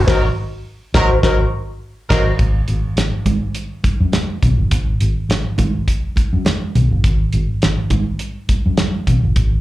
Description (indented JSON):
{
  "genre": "funk",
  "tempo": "103 BPM",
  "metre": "4/4",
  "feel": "swing 56% on 16ths",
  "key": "Ab mixolydian",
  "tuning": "A4 = 440 Hz",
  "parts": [
    { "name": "clear horn section", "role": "second line", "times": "0.0-2.3 s", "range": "Gb3 to Bb4", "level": "-20 LUFS", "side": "right 2 dB", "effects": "slapback echo" },
    { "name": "vintage muted fingered electric bass", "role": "bass", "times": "0.0-9.6 s", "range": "G1 to Ab2", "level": "-17 LUFS", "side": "equal", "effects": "none" },
    { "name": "mellow electric guitar", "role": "accompaniment", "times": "0.1-2.3 s", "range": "Gb4 to C5", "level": "-20 LUFS", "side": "left 4 dB", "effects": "wah, wide subtle chorus, slapback echo" },
    { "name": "damped 70s drum kit", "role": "drums", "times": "0.1-9.5 s", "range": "crash cymbal, hi-hat, kick drum, snare drum", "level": "-18 LUFS", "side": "equal", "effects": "none" },
    { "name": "congas", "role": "percussion", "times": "2.4-9.2 s", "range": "none", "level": "-25 LUFS", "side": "right 4 dB", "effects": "slapback echo" }
  ],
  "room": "little or no reverb",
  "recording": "live gig heard through the venue's PA, club reverb",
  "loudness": "-15 LUFS",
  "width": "side -16 dB against mid",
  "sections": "0.0-2.4 A section; 2.4-9.6 B section",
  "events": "band accent 0.1-2.4",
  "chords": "0.0 Ab9; 2.4 N.C."
}